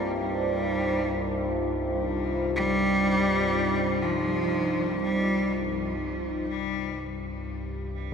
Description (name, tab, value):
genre	ambient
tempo	free time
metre	none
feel	none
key	unclear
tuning	A4 = 440 Hz
part	clear cello	melody	0.0-5.7 s	F3 to G3	-28 LUFS	equal	ping-pong delay
part	deep dark ambient pad	sustained chords	0.0-8.1 s	Eb4 to C5	-30 LUFS	right 1 dB	chorus, built-in reverb
part	old church bells	arpeggios	0.0-4.1 s	none	barely audible	none	none
part	analog drone	drone	0.0-8.1 s	C2 to G2	-31 LUFS	left 1 dB	chorus
room	wet cathedral reverb, RT60 5.1 s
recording	none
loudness	-24 LUFS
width	side -6 dB against mid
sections	0.0-6.0 A section; 6.0-8.1 B section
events	none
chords	0.0 Cm